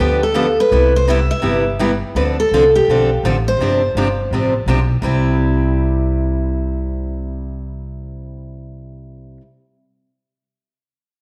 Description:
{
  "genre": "acoustic string swing (jazz manouche)",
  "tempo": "167 BPM",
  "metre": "4/4",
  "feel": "swing 60% on 8ths",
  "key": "C major",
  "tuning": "A4 = 441 Hz",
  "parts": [
    { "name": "picked steel-string acoustic guitar", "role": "melody", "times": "0.0-4.6 s", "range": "G4 to E5", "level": "-19 LUFS", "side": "equal", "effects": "slapback echo" },
    { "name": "picked steel-string acoustic guitar", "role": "accompaniment", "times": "0.0-9.4 s", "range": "C3 to A4", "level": "-22 LUFS", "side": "equal", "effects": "none" },
    { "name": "upright bass", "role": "bass", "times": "0.0-9.4 s", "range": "G1 to D2", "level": "-22 LUFS", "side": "equal", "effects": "none" }
  ],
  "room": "wet echo chamber reverb, RT60 1.5 s, studio reverb",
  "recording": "none",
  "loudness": "-16 LUFS",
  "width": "mono",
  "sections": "0.0-2.1 A section; 2.1-5.0 B section; 5.0-7.9 C section",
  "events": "none",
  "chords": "0.0 G7; 0.7 Cmaj7; 2.1 Dm7; 3.6 G7sus4; 5.0 C"
}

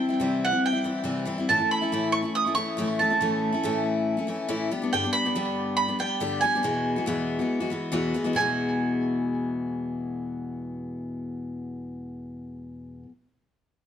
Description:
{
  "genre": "rock",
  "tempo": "140 BPM",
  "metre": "4/4",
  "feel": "straight",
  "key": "E major",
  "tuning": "A4 = 440 Hz",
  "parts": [
    { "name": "bowl-back mandolin", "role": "melody", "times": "0.0-13.0 s", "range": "F#5 to D#6", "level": "-26 LUFS", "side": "right 4 dB", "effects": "tape echo" },
    { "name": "picked steel-string acoustic guitar", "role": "accompaniment", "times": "0.0-13.1 s", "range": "E2 to G4", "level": "-26 LUFS", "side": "left 2 dB", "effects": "none" }
  ],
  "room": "moderate studio reverb, RT60 0.8 s",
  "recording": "dark, warm production",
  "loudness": "-24 LUFS",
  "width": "side -9 dB against mid",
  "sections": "0.0-8.4 A section; 8.4-11.8 B section",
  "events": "none",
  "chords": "0.0 C; 1.5 A; 4.7 G; 6.6 Eadd9"
}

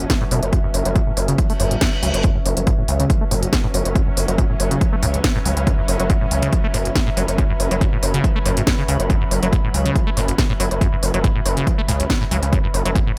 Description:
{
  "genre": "driving peak-time techno",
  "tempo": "140 BPM",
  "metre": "4/4",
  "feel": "straight",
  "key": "F# minor",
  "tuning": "A4 = 441 Hz",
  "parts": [
    { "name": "acid bass, saw", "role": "riff", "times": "0.0-13.1 s", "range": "F#1 to A3", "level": "-26 LUFS", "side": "equal", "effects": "vintage 12-bit sampler grit, sidechain pumping, digital delay" },
    { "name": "gritty driven synth bass", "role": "bass", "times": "0.0-13.0 s", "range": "F#1 to C#2", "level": "-23 LUFS", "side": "equal", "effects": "distortion, sidechain pumping" },
    { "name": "swarming drone", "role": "drone", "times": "0.0-13.2 s", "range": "F#3 to C#4", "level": "-33 LUFS", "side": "equal", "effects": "built-in reverb, sidechain pumping" },
    { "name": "techno drum kit", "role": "drums", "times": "0.0-13.0 s", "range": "hi-hat, snare drum", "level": "-26 LUFS", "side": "equal", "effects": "sidechain pumping on hats" },
    { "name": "warbly tape-like pad", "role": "texture", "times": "0.0-13.2 s", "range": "B4 to B5", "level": "-32 LUFS", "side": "equal", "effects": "chorus, built-in reverb, sidechain pumping" },
    { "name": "electronic kick drum", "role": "drums", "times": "0.1-13.0 s", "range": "none", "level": "-21 LUFS", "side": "equal", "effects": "none" },
    { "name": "reverse cymbal", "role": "sound effects", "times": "1.5-2.2 s", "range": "none", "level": "-30 LUFS", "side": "equal", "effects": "none" }
  ],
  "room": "little or no reverb",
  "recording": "none",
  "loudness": "-19 LUFS",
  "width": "mono",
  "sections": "0.0-13.2 A section",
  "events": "reverse cymbal 1.5-2.2",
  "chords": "0.0 F#m"
}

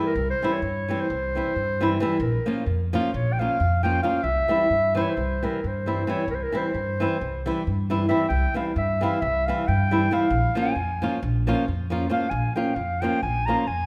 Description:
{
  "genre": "balkan folk, Balkan wedding band",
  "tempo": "267 BPM (eighths)",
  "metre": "9/8",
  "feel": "straight",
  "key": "C phrygian dominant",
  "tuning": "A4 = 440 Hz",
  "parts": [
    { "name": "mellow clarinet", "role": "second line", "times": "0.0-13.9 s", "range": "Bb4 to Bb5", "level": "-28 LUFS", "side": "equal", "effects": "none" },
    { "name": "flamenco guitar", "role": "accompaniment", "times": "0.0-13.6 s", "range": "E3 to F4", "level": "-28 LUFS", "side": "equal", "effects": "none" },
    { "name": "upright bass", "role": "bass", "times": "0.2-13.9 s", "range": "Bb1 to G2", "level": "-29 LUFS", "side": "equal", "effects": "none" }
  ],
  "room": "moderate scoring stage reverb, RT60 1.5 s",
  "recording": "none",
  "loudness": "-24 LUFS",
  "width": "mono",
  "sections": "0.0-13.9 A section",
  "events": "clarinet solo 0.0-13.9",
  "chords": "0.0 C; 2.2 Bbm; 4.2 C; 10.3 Bbm"
}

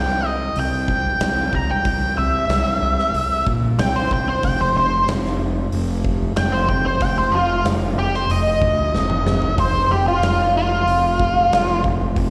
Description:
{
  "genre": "blues rock power trio and southern rock",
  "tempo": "93 BPM",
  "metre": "4/4",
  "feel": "straight",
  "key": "unclear",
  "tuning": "A4 = 440 Hz",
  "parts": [
    { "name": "octave-fuzz lead guitar", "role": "melody", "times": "0.0-11.8 s", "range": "F4 to Bb5", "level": "-22 LUFS", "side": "equal", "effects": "wah, distortion, slapback echo" },
    { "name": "fuzz fingered electric bass", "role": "bass", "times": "0.0-12.3 s", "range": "F1 to Bb2", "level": "-24 LUFS", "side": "equal", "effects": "overdrive" },
    { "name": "huge arena drum kit", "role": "drums", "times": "0.1-12.3 s", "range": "hi-hat, kick drum, snare drum, toms", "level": "-27 LUFS", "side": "equal", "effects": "none" }
  ],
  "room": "light reverb",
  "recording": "live gig heard through the venue's PA, recital hall reverb",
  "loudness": "-19 LUFS",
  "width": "mono",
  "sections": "0.0-12.3 A section",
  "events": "lead electric guitar solo 0.0-12.3; drum fill 8.9-9.6",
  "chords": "0.0 C; 4.4 F5"
}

